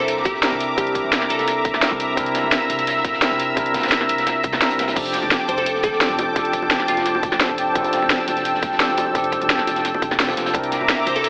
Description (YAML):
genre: liquid drum and bass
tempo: 172 BPM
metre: 4/4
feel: straight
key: F major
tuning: A4 = 440 Hz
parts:
  - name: glassy wavetable pluck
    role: melody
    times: 0.0-1.6, 5.5-7.4, 11.1-11.3 s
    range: F4 to C5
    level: -28 LUFS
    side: equal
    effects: chorus, dub echo
  - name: tine electric piano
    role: accompaniment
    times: 0.0-11.3 s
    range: C3 to Bb4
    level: -27 LUFS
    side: equal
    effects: vintage 12-bit sampler grit, tape echo
  - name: lush unison pad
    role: sustained chords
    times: 0.0-11.3 s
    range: E5 to E6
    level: -25 LUFS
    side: equal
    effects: chorus, phaser, sidechain pumping
  - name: upright bass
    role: bass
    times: 0.0-11.3 s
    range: F1 to D2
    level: -39 LUFS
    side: equal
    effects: none
  - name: crunchy breakbeat drum kit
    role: drums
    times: 0.0-11.3 s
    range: hi-hat, snare drum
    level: -32 LUFS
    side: equal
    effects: high-pass filter on hats, high-pass filter on snare, high-pass filter on room
  - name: drum and bass drum kit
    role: drums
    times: 0.0-11.3 s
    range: crash cymbal, hi-hat, snare drum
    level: -23 LUFS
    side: equal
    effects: none
  - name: electronic kick drum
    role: drums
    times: 0.3-10.6 s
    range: none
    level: -27 LUFS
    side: equal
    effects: none
  - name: bongos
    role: percussion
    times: 5.2-11.1 s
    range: none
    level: -34 LUFS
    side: equal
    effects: none
room: moderate digital room reverb, RT60 1.2 s, studio reverb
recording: AM radio sound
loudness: -20 LUFS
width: mono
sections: 0.0-11.3 A section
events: kick drops out 4.6-5.0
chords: 0.0 C9; 5.0 F6; 10.5 C9